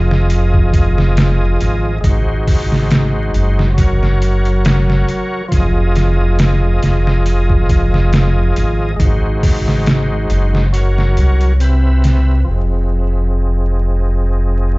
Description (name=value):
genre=trip hop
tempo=69 BPM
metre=4/4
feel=swing 55% on 16ths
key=F phrygian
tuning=A4 = 442 Hz
part: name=overdriven tonewheel organ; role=accompaniment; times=0.0-14.8 s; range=C3 to E5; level=-19 LUFS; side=equal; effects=chorus vibrato, harmonic tremolo, vintage 12-bit sampler grit, low-pass filter, tape echo
part: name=round analog bass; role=bass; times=0.0-14.8 s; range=F1 to C2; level=-14 LUFS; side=equal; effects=none
part: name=trip hop sampler-style drum kit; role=drums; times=0.1-12.3 s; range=hi-hat, kick drum, snare drum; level=-16 LUFS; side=equal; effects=overdrive
room=little or no reverb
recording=played on a big sound system in a bare room, large studio reverb, vinyl crackle, nothing above 7.8 kHz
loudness=-12 LUFS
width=side -23 dB against mid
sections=0.0-12.5 A section; 12.5-14.8 B section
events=kick drops out 10.7-12.5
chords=0.0 Fm7; 2.0 Ab7; 3.8 Gb; 5.5 Fm7; 9.0 Ab7; 10.7 Gb; 11.6 Cmaj7; 12.5 Fm7